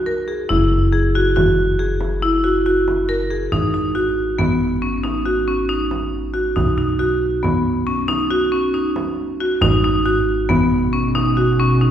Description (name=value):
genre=contemporary instrumental, chamber music in an uneven meter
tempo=138 BPM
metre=7/4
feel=straight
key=unclear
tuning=A4 = 440 Hz
part: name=marimba with hard mallets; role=arpeggios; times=0.0-11.9 s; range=B3 to A#4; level=-17 LUFS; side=equal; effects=none
part: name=upright bass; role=bass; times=0.0-11.9 s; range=F#1 to B1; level=-24 LUFS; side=equal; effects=none
part: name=frame drum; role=percussion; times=0.1-11.9 s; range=none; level=-24 LUFS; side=right 1 dB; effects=none
part: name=ethereal airy pad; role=sustained chords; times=10.7-11.9 s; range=B2 to F#4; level=-19 LUFS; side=right 1 dB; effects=ensemble chorus, built-in reverb
room=wet scoring stage reverb, RT60 1.6 s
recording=heard from further back in the room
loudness=-16 LUFS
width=side -10 dB against mid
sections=0.0-3.5 A section; 3.5-11.9 B section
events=none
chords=0.0 Bmaj7(no3); 0.5 F#7sus2; 3.5 G#m7; 6.6 B; 9.6 G#m7